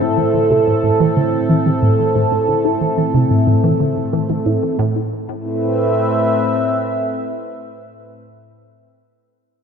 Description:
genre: ambient, sequencer-driven space music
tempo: 91 BPM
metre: 4/4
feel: straight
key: A minor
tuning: A4 = 440 Hz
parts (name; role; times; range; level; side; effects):
- sweeping resonant pad; sustained chords; 0.0-8.2 s; A2 to E5; -16 LUFS; right 1 dB; chorus, phaser
- soft round pluck; arpeggios; 0.0-5.1 s; none; barely audible; none; none
- resonant blip pluck; riff; 0.0-5.1 s; A2 to E4; -18 LUFS; equal; phaser, ping-pong delay
room: wet lush hall reverb, RT60 2.8 s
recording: none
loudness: -14 LUFS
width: side -6 dB against mid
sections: 0.0-4.8 A section; 4.8-7.4 B section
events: filter sweep on synth arpeggio sound 0.0-4.8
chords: 0.0 Am; 4.8 Amadd9

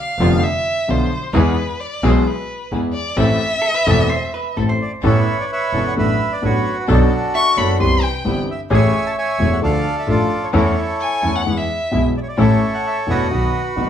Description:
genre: tango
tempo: 130 BPM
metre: 4/4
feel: rubato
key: A harmonic minor, A major from 5.0 s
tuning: A4 = 440 Hz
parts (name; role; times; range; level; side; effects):
- rich violin; second line; 0.0-4.6, 7.3-12.0 s; B4 to C#6; -20 LUFS; left 1 dB; none
- warm concert grand piano; accompaniment; 0.2-13.9 s; E1 to A4; -19 LUFS; left 2 dB; none
- warm chamber string section; stabs; 0.2-13.9 s; G#3 to B4; -30 LUFS; right 3 dB; none
- clear double bass; bass; 0.2-13.9 s; E1 to E2; -20 LUFS; right 2 dB; none
- vintage hollow-body jazz guitar; second line; 3.6-8.3 s; A4 to E5; -26 LUFS; right 3 dB; none
- bandoneon; melody; 4.8-13.9 s; D4 to A5; -21 LUFS; right 2 dB; none
room: wet large studio reverb, RT60 0.8 s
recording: band playing live in one room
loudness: -15 LUFS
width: side -9 dB against mid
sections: 0.0-5.0 A section; 5.0-13.9 B section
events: violin solo 0.0-5.0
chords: 0.0 Bdim; 1.3 E; 3.2 Am; 5.0 Aadd9; 6.0 D6/A; 6.9 Bm7; 7.8 Cmaj7; 8.7 Amaj7; 9.6 Dm; 10.5 A/E; 11.5 E; 12.4 A; 13.3 B

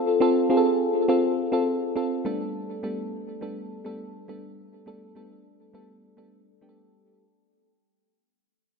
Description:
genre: pop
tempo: 103 BPM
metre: 4/4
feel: straight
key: unclear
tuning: A4 = 439 Hz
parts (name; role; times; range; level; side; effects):
- mellow FM electric piano; solo; 0.0-7.2 s; G3 to A4; -23 LUFS; equal; chorus, digital delay
room: moderate lush hall reverb, RT60 3.0 s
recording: none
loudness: -22 LUFS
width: side -4 dB against mid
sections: 0.0-7.2 A section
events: fade-out 0.0-7.2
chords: 0.0 F; 2.2 Gadd9

